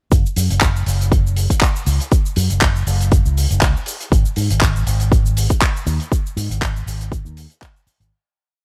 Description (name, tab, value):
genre	nu-disco, nu disco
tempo	120 BPM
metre	4/4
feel	swing 54% on 16ths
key	unclear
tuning	A4 = 438 Hz
part	fingered electric bass with an envelope filter	bass	0.1-8.1 s	F#1 to G#2	-20 LUFS	equal	none
part	electronic kick drum	drums	0.1-7.7 s	none	-18 LUFS	equal	none
part	tight funk drum kit	drums	0.1-8.1 s	handclaps, hi-hat, shaker	-24 LUFS	equal	none
room	little or no reverb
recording	none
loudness	-17 LUFS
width	mono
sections	0.1-8.1 drop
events	drop 0.1-8.1; fade-out 5.5-8.1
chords	none